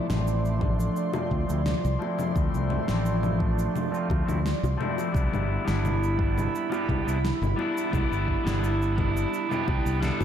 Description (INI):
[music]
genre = sunset chillout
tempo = 86 BPM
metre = 4/4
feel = straight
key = D dorian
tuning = A4 = 440 Hz
[part]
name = electric guitar at the edge of break-up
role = accompaniment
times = 0.0-10.2 s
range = F3 to A4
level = -31 LUFS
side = moving between left 6 dB and right 4 dB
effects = auto-pan, low-pass filter, tape echo
[part]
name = airy breathy pad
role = sustained chords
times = 0.0-10.2 s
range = F3 to C6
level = -30 LUFS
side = right 1 dB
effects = chorus
[part]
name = fingered electric bass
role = bass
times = 0.1-10.2 s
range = G1 to D2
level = -27 LUFS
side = equal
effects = tube saturation
[part]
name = electronic snare drum, congas and cabasa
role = drums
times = 0.1-10.2 s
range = none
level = -33 LUFS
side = left 2 dB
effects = none
[part]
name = electronic kick drum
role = drums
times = 0.6-9.8 s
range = none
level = -28 LUFS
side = equal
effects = none
[part]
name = bongos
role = percussion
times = 1.1-10.2 s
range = none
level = -38 LUFS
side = left 5 dB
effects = none
[sound]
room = moderate plate reverb, RT60 2.1 s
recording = dreamy mix soaked in reverb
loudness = -24 LUFS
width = side -9 dB against mid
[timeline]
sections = 0.0-10.2 A section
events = filter sweep on clean electric guitar 0.0-10.2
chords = 0.0 Dm7; 5.2 Cmaj7